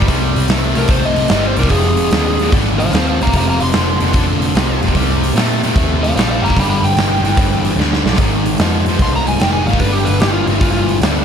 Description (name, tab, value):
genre	blues rock power trio and southern rock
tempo	148 BPM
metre	4/4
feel	swing 68% on 8ths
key	C minor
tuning	A4 = 439 Hz
part	sludgy distorted guitar	riff	0.0-11.2 s	F2 to A3	-17 LUFS	equal	overdrive
part	vintage muted picked electric bass	bass	0.0-11.2 s	F1 to Bb2	-18 LUFS	equal	none
part	huge arena drum kit	drums	0.0-11.2 s	hi-hat, kick drum, snare drum	-16 LUFS	equal	none
part	overdriven slide guitar	melody	0.8-11.0 s	F4 to C6	-20 LUFS	equal	none
room	light reverb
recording	none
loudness	-12 LUFS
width	side -7 dB against mid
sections	0.0-11.2 A section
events	drum fill 7.8-8.2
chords	0.0 Cm; 1.7 Fm7; 5.0 Cm7; 6.6 G5; 8.2 Ab; 9.8 G5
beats	| 0.10 0.50 0.91 1.31 | 1.72 2.12 2.53 2.93 | 3.33 3.74 4.14 4.55 | 4.95 5.36 5.76 6.16 | 6.57 6.97 7.38 7.78 | 8.18 8.59 8.99 9.40 | 9.80 10.20 10.61 11.01